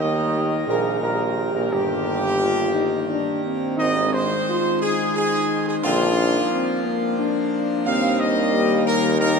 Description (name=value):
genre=classical, ceremonial fanfare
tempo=88 BPM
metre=3/4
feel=straight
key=Eb major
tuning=A4 = 440 Hz
part: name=dark trumpet section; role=melody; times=0.0-9.4 s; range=F4 to F5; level=-23 LUFS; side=right 1 dB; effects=none
part: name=clear trombone section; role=sustained chords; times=0.0-9.4 s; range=G2 to Eb4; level=-29 LUFS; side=equal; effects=none
part: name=dark French horn section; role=sustained chords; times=0.0-9.4 s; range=Bb3 to Ab4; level=-24 LUFS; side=equal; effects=stereo widening
part: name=pipe organ, full organ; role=sustained chords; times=0.0-9.4 s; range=Eb3 to C5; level=-27 LUFS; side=left 2 dB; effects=none
part: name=clear tuba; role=bass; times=0.0-9.4 s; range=G1 to Eb2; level=-25 LUFS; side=equal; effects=none
room=wet cathedral reverb, RT60 6.4 s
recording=in a vast, echoing space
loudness=-19 LUFS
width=side -5 dB against mid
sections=0.0-9.4 A section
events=none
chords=0.0 Eb; 3.8 Ab; 5.8 Bbadd9; 7.9 Eb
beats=0.34 1.03 | 1.72 2.41 3.10 | 3.79 4.48 5.16 | 5.83 6.51 7.18 | 7.86 8.53 9.21